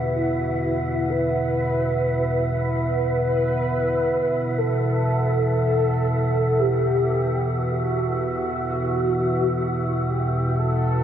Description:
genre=dark ambient drone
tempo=free time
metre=none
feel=none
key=unclear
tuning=A4 = 441 Hz
part: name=mellow horn-like synth lead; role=melody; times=0.0-11.0 s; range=E4 to B4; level=-24 LUFS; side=equal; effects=phaser, lush chorus, diffuse ambient delay
part: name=dark analog pad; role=sustained chords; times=0.0-11.0 s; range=E4 to F#5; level=-29 LUFS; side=equal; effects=chorus
part: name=deep rumbling drone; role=drone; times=0.0-11.0 s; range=E2 to B2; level=-24 LUFS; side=equal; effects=built-in reverb
part: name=wind-like tuned noise texture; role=texture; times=0.0-11.0 s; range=E5 to F#5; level=-30 LUFS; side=right 2 dB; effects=built-in reverb
room=wet huge ambient reverb, RT60 8.7 s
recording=none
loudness=-20 LUFS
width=side -9 dB against mid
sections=0.0-11.0 A section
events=none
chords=0.0 Esus2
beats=free time

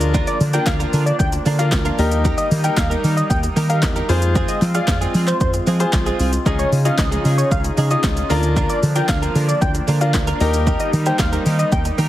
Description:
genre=dance-pop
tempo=114 BPM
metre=4/4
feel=straight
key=Eb major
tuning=A4 = 437 Hz
part: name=bright concert grand piano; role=accompaniment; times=0.0-11.9 s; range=Db4 to Eb5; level=-25 LUFS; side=left 4 dB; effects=sidechain pumping
part: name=chorused pulse-width pad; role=sustained chords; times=0.0-12.1 s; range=Db3 to Ab4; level=-27 LUFS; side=right 1 dB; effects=sidechain pumping
part: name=direct-recorded clean electric guitar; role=riff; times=0.0-12.1 s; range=F3 to Bb4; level=-27 LUFS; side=right 4 dB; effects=analog chorus
part: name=fingered electric bass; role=bass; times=0.0-12.1 s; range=Cb2 to F3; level=-19 LUFS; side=equal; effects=sidechain pumping
part: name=punchy analog drum machine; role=drums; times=0.0-12.1 s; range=handclaps, hi-hat, kick drum, shaker, snare drum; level=-21 LUFS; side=equal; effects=overdrive
part: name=octave-doubled lead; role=melody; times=0.3-11.8 s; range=Ab4 to G5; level=-24 LUFS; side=equal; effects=chorus, digital delay
part: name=group handclap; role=percussion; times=0.7-11.3 s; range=none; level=barely audible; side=none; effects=none
room=light reverb, digital ambience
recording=heavily compressed radio sound, multiband compression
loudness=-15 LUFS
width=side -14 dB against mid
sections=0.0-12.1 A section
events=none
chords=0.0 Bb/D; 2.0 Eb; 4.1 Fm; 6.5 Dbadd9; 8.3 Bb/D; 10.4 Eb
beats=| 0.14 0.67 1.20 1.72 | 2.25 2.77 3.30 3.83 | 4.35 4.88 5.41 5.93 | 6.46 6.99 7.51 8.04 | 8.56 9.09 9.62 10.14 | 10.67 11.20 11.72

